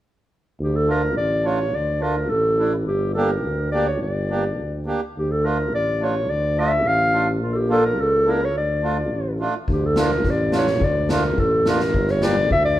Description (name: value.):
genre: klezmer.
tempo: 106 BPM.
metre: 2/4.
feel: straight.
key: D harmonic minor.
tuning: A4 = 443 Hz.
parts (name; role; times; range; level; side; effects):
warm clarinet; melody; 0.6-12.8 s; F4 to F5; -21 LUFS; equal; none.
mellow tuba; bass; 0.6-12.8 s; G1 to D2; -23 LUFS; equal; none.
accordion; accompaniment; 0.9-12.4 s; A3 to G4; -27 LUFS; right 2 dB; none.
street-band drum kit; drums; 9.7-12.6 s; kick drum, snare drum; -24 LUFS; left 1 dB; none.
room: moderate large studio reverb, RT60 1.3 s.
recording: band playing live in one room.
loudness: -18 LUFS.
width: side -14 dB against mid.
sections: 0.6-9.7 A section; 9.7-12.8 A section.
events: none.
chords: 0.6 Dm; 2.9 Gm; 5.1 Dm; 7.4 Bb; 8.6 Dm; 11.9 Gm.